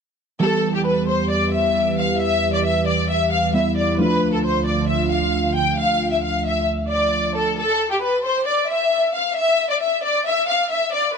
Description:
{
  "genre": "hip hop",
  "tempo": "134 BPM",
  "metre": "4/4",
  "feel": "half-time",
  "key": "E phrygian",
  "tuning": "A4 = 440 Hz",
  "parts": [
    { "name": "warm studio violin section", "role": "melody", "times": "0.4-11.1 s", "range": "G4 to G5", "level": "-19 LUFS", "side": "left 2 dB", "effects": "none" },
    { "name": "warbly lo-fi synth keys", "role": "accompaniment", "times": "0.4-7.6 s", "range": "E3 to G4", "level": "-22 LUFS", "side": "right 2 dB", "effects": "chorus" },
    { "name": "dark analog pad", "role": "sustained chords", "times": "0.9-7.5 s", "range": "D2 to F5", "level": "-25 LUFS", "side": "right 1 dB", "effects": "chorus, phaser" }
  ],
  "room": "light reverb, small room ambience",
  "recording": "dark, warm production",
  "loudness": "-17 LUFS",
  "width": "side -6 dB against mid",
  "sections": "0.4-7.6 A section; 7.6-11.2 B section",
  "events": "none",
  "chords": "0.4 Em; 4.0 Dm; 7.6 N.C."
}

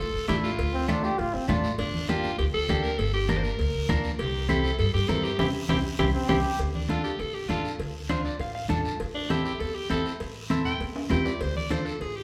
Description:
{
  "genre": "latin, cumbia",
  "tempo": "200 BPM",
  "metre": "4/4",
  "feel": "straight",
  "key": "D minor",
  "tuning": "A4 = 439 Hz",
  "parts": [
    { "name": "raspy alto saxophone", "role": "melody", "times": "0.0-12.2 s", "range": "D4 to G5", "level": "-33 LUFS", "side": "equal", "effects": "none" },
    { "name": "upright bass", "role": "bass", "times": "0.0-12.2 s", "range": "G1 to G2", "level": "-33 LUFS", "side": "equal", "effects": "none" },
    { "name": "clean electric guitar", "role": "accompaniment", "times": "0.3-11.9 s", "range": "A3 to A5", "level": "-32 LUFS", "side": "equal", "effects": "spring reverb" },
    { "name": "congas", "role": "percussion", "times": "0.3-11.9 s", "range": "none", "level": "-35 LUFS", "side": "equal", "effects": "none" },
    { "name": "cowbell and timbales", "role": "percussion", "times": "0.3-12.2 s", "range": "none", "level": "-40 LUFS", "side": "equal", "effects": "none" },
    { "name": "guiro", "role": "percussion", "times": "0.3-12.2 s", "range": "none", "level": "-44 LUFS", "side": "equal", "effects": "none" },
    { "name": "bright trombone", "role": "second line", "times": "0.7-1.7, 6.1-6.6 s", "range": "C4 to G4", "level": "-33 LUFS", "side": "equal", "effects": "none" }
  ],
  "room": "wet large studio reverb, RT60 1.3 s",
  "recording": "band playing live in one room",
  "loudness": "-27 LUFS",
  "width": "mono",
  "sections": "0.0-6.6 A section; 6.6-12.2 B section",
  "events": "band accent 5.4-6.6; drum fill 5.8-6.6, 11.0-11.4; alto saxophone solo 6.6-12.2; clean electric guitar fill 8.1-9.0",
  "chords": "0.0 Dm; 1.8 Gm; 4.2 C; 6.6 Dm; 9.0 Am7; 11.4 Dm"
}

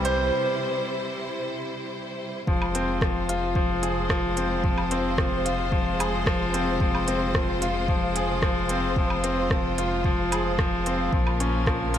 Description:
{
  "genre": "piano and strings electronica",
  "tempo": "111 BPM",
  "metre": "4/4",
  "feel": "straight",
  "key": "F harmonic minor",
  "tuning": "A4 = 440 Hz",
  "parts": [
    { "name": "clear studio string section", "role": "sustained chords", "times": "0.0-12.0 s", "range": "C3 to C5", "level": "-30 LUFS", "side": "equal", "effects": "sidechain pumping" },
    { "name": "bright concert grand piano", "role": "riff", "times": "0.0-12.0 s", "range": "E3 to C5", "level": "-26 LUFS", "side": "left 1 dB", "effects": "digital delay" },
    { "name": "warm sub bass", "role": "bass", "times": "0.0-12.0 s", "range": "F1 to C2", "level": "-31 LUFS", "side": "equal", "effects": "sidechain pumping" },
    { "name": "organic electronic drum kit", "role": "drums", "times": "0.0-12.0 s", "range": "hi-hat, rim click, woodblock", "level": "-30 LUFS", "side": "right 1 dB", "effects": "none" },
    { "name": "electronic kick drum", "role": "drums", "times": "2.5-11.8 s", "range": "none", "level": "-26 LUFS", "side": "equal", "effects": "none" }
  ],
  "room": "moderate concert hall reverb, RT60 2.2 s",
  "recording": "none",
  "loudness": "-22 LUFS",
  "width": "side -10 dB against mid",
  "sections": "0.0-2.5 A section; 2.5-12.0 B section",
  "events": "build-up 0.0-2.5; break 0.3-2.5; drop 2.5-12.0",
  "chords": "0.0 C; 2.5 Fm; 11.1 Bbm"
}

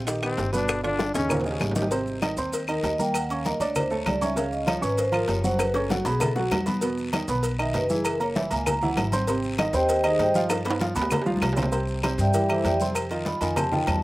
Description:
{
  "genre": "Afro-Cuban jazz",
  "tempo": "196 BPM",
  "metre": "4/4",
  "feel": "straight",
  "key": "unclear",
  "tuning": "A4 = 440 Hz",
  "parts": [
    { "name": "upright bass", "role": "bass", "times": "0.0-14.0 s", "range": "Gb1 to G2", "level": "-30 LUFS", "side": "equal", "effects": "none" },
    { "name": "dark baby grand piano", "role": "accompaniment", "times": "0.1-14.0 s", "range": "Bb2 to D6", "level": "-28 LUFS", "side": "right 2 dB", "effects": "none" },
    { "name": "bongos and cowbell", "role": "percussion", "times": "0.1-14.0 s", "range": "none", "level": "-33 LUFS", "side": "left 3 dB", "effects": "slapback echo" },
    { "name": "congas", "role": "percussion", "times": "0.1-14.0 s", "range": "none", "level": "-30 LUFS", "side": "left 1 dB", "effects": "none" },
    { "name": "guiro", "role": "percussion", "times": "0.1-14.0 s", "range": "none", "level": "-41 LUFS", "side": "left 4 dB", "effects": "none" },
    { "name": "maracas", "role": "percussion", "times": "0.1-14.0 s", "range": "none", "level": "-40 LUFS", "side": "right 3 dB", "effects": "none" },
    { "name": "timbales and agogo bells", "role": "percussion", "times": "0.1-14.0 s", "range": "none", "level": "-32 LUFS", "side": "right 2 dB", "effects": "none" },
    { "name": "brilliant trombone", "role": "second line", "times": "0.2-1.4 s", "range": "C4 to D4", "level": "-29 LUFS", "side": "left 3 dB", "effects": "none" },
    { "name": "claves", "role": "percussion", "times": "0.2-14.0 s", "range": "none", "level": "-32 LUFS", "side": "left 5 dB", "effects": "none" },
    { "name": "vibraphone with medium mallets", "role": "melody", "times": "2.7-14.0 s", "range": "Eb4 to B5", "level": "-26 LUFS", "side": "equal", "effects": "none" }
  ],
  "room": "little or no reverb",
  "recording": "recorded outdoors, with no room sound",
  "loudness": "-22 LUFS",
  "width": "side -18 dB against mid",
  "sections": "0.0-1.9 A section; 1.9-11.7 A section; 11.7-14.0 A section",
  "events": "trombone solo 0.0-1.9; drum fill 1.1-1.9, 5.6-6.8, 10.5-11.7; vibraphone solo 1.9-14.0",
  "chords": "0.0 Eb6; 0.7 G7; 1.3 Eb7; 1.9 Ab; 3.1 Eb5; 3.8 D5; 4.4 Db; 5.6 Gb5; 6.2 B5; 6.8 Esus2; 8.0 Gb9; 9.3 Abmaj7; 10.5 G7; 11.7 Cadd9; 13.0 F5"
}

